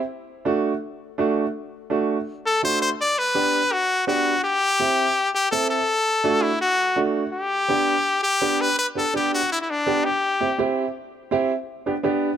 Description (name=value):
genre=latin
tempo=166 BPM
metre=4/4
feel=straight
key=G major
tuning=A4 = 440 Hz
part: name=warm upright piano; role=accompaniment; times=0.5-12.3 s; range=A3 to A4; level=-24 LUFS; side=right 3 dB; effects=none
part: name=brilliant trumpet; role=melody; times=2.5-10.6 s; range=D4 to D5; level=-20 LUFS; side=left 2 dB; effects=none
room=moderate plate reverb, RT60 2.9 s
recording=none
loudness=-20 LUFS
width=side -9 dB against mid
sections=0.0-8.8 A section; 8.8-12.4 B section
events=none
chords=0.1 D; 3.0 G; 4.4 C; 5.9 D; 7.3 G; 10.2 C; 11.7 G